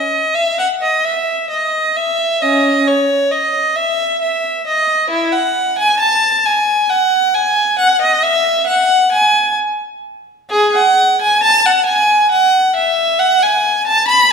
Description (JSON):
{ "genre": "classical, baroque-style suite movement for unaccompanied violin", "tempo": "67 BPM", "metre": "3/4", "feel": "rubato", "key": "unclear", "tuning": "A4 = 444 Hz", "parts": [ { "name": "clear violin", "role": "solo", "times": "0.0-14.3 s", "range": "C#4 to B5", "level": "-12 LUFS", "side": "equal", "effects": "none" } ], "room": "wet recital hall reverb, RT60 1.4 s", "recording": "recorded in a church or concert hall", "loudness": "-12 LUFS", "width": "side -6 dB against mid", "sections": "0.0-14.3 A section", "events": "none", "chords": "none" }